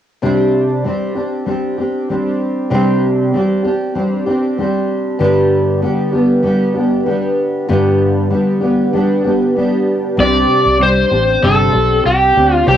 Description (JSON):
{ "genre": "pop", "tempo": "96 BPM", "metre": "4/4", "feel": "swing 55% on 16ths", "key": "unclear", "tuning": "A4 = 437 Hz", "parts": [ { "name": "fingerpicked steel-string acoustic guitar", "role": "accompaniment", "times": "0.2-12.8 s", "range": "G2 to G4", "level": "-13 LUFS", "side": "equal", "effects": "double-tracked left and right, cassette tape" }, { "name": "overdriven slide guitar", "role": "melody", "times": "10.2-12.8 s", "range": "G4 to D5", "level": "-12 LUFS", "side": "left 1 dB", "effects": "cassette tape, plate reverb" }, { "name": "vintage muted fingered electric bass", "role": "bass", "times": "10.2-12.8 s", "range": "G1 to D2", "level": "-18 LUFS", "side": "equal", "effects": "none" } ], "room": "moderate small room reverb, RT60 0.6 s", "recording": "home recording on cassette", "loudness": "-12 LUFS", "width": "side -10 dB against mid", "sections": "0.2-10.2 A section; 10.2-12.8 B section", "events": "none", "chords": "0.2 Csus2; 5.2 G; 10.2 Csus2" }